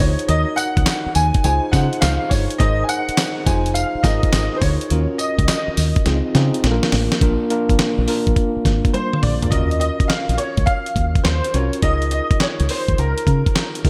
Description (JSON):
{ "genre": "R&B, new jack swing", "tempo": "104 BPM", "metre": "4/4", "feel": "swing 67% on 16ths", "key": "Eb dorian", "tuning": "A4 = 440 Hz", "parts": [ { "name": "clear grand piano", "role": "melody", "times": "0.0-13.8 s", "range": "Bb4 to Ab5", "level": "-25 LUFS", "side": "equal", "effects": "ensemble chorus" }, { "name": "bell-like tine electric piano", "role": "accompaniment", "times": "0.0-13.9 s", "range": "Bb3 to F5", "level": "-26 LUFS", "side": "equal", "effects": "none" }, { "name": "deep dub fingered electric bass", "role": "bass", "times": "0.0-13.9 s", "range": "F1 to Db3", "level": "-22 LUFS", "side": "equal", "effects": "none" }, { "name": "dusty soul sampler-style drum kit", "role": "drums", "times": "0.0-13.9 s", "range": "handclaps, hi-hat, kick drum, snare drum, tambourine, toms", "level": "-22 LUFS", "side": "equal", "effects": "gated reverb" } ], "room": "light reverb, digital ambience", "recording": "bright 1980s-style digital production", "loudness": "-18 LUFS", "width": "mono", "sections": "0.0-7.2 A section; 7.2-9.5 B section; 9.5-13.9 C section", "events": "drum fill 6.1-7.2, 8.9-9.5", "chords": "0.3 Ebm7; 1.4 Dbmaj7; 2.6 Abadd9; 3.5 Fm7; 4.9 Ebm7; 6.1 Dbmaj7; 6.6 Bb; 9.5 Ebm9; 11.8 Db69", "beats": "| 0.29 0.86 1.44 2.02 | 2.60 3.17 3.75 4.33 | 4.90 5.48 6.06 6.63 | 7.21 7.79 8.36 8.94 | 9.52 10.10 10.67 11.25 | 11.83 12.40 12.98 13.56" }